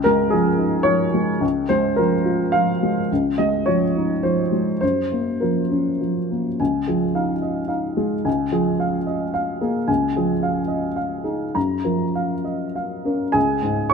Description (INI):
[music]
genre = neoclassical minimalist piano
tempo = 99-113 BPM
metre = 3/4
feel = rubato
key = Db major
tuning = A4 = 444 Hz
[part]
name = dark upright piano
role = solo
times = 0.0-13.9 s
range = Db2 to Db6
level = -18 LUFS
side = equal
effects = none
[sound]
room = light reverb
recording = minimal, uncompressed stereo recording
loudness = -19 LUFS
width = side -6 dB against mid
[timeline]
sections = 0.0-6.6 A section; 6.6-13.4 B section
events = none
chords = 0.0 Dbadd9; 1.4 Bbm7/Db; 3.1 Dbadd9; 4.8 Gbmaj7; 6.6 Dbadd9; 8.3 Bbm7/Db; 9.9 Dbadd9; 11.6 Gbmaj7; 13.4 Db5